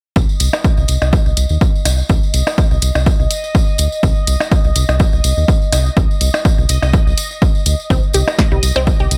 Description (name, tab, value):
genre	minimal techno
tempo	124 BPM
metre	4/4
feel	swing 54% on 16ths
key	C minor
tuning	A4 = 439 Hz
part	round analog bass	bass	0.2-9.2 s	C2 to Eb2	-18 LUFS	equal	sidechain pumping
part	electronic kick drum	drums	0.2-9.0 s	none	-16 LUFS	equal	none
part	tambourine	percussion	0.2-9.2 s	none	-28 LUFS	equal	none
part	bubbling stepped-filter texture	texture	0.2-9.2 s	Eb5	-29 LUFS	equal	chorus, built-in reverb, sidechain pumping
part	punchy analog drum machine	drums	0.4-9.2 s	hi-hat, snare drum	-20 LUFS	equal	none
part	percussion blips	percussion	0.5-8.8 s	none	-24 LUFS	equal	overdrive, analog delay
part	resonant blip pluck	riff	7.9-9.0 s	G3 to G4	-22 LUFS	equal	phaser, sidechain pumping, tape echo
room	little or no reverb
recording	dry, gritty hardware recording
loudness	-15 LUFS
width	mono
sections	0.2-9.2 A section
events	none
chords	0.2 Cm